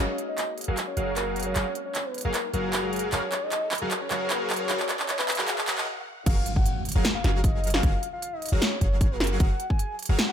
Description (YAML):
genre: future bass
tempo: 153 BPM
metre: 4/4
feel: half-time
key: F# major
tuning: A4 = 444 Hz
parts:
  - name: soft octave-layered synth lead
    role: melody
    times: 0.0-10.3 s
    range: F#4 to G#5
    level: -32 LUFS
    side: left 1 dB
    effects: chorus, sidechain pumping, digital delay
  - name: glassy digital keys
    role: accompaniment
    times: 0.0-6.1 s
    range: G#3 to E#5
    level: -40 LUFS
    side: left 5 dB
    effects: chorus, phaser, sidechain pumping, ping-pong delay
  - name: Celtic harp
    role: arpeggios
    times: 0.0-2.5 s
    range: D#4 to D#5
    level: -44 LUFS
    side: left 2 dB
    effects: none
  - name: supersaw chords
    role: riff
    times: 0.0-10.2 s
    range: F#3 to E#5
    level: -32 LUFS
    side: equal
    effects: sidechain pumping, low-pass filter
  - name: warm 808-style bass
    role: bass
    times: 0.0-10.2 s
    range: F#1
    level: -27 LUFS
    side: equal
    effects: sidechain pumping
  - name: riser and impact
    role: sound effects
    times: 0.0-7.8 s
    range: none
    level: -36 LUFS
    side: right 1 dB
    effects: none
  - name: big-room dance drum kit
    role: drums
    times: 0.2-10.3 s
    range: crash cymbal, handclaps, hi-hat, snare drum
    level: -28 LUFS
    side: right 1 dB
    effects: none
  - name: electronic kick drum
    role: drums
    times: 6.3-9.8 s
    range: none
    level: -23 LUFS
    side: equal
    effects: none
room: moderate digital room reverb, RT60 1.1 s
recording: high-pass filter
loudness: -24 LUFS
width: side -9 dB against mid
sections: 0.0-6.3 A section; 6.3-10.3 B section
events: build-up 0.0-6.3; drum fill 0.0-5.9; filter sweep on supersaw synth 0.0-6.3; filter sweep 0.0-6.3; stop 5.9-6.3; drop 6.3-10.3; impact 6.3-7.8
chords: 0.0 F#maj7; 6.1 N.C.; 6.3 F#maj7